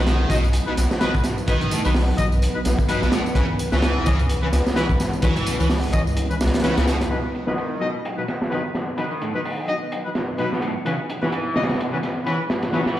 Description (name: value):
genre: breakbeat, breaks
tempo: 128 BPM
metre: 4/4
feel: swing 57% on 16ths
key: unclear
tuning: A4 = 437 Hz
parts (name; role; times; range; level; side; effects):
- deep dark ambient pad; sustained chords; 0.0-13.0 s; F#3 to D#5; -30 LUFS; equal; chorus, built-in reverb, sidechain pumping
- distorted electric guitar; riff; 0.0-13.0 s; A2 to F#3; -28 LUFS; right 1 dB; overdrive, low-pass filter, digital delay
- bright brass ensemble; stabs; 0.0-12.8 s; E3 to D#5; -27 LUFS; left 2 dB; vintage 12-bit sampler grit, digital delay
- saturated sub bass; bass; 0.0-7.1 s; B1 to C#2; -21 LUFS; equal; none
- crunchy breakbeat drum kit; drums; 0.1-13.0 s; hi-hat, kick drum, snare drum; -23 LUFS; equal; low-pass filter on kick, low-pass filter on hats, low-pass filter on snare, low-pass filter on room
- tambourine; drums; 0.1-7.1 s; none; -38 LUFS; right 1 dB; overdrive
room: light reverb, small room ambience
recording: played on a big sound system in a bare room, large studio reverb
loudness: -19 LUFS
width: side -13 dB against mid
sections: 0.0-7.1 A section; 7.1-13.0 B section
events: none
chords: 0.0 B; 3.4 C#m7; 7.1 B; 10.9 C#m7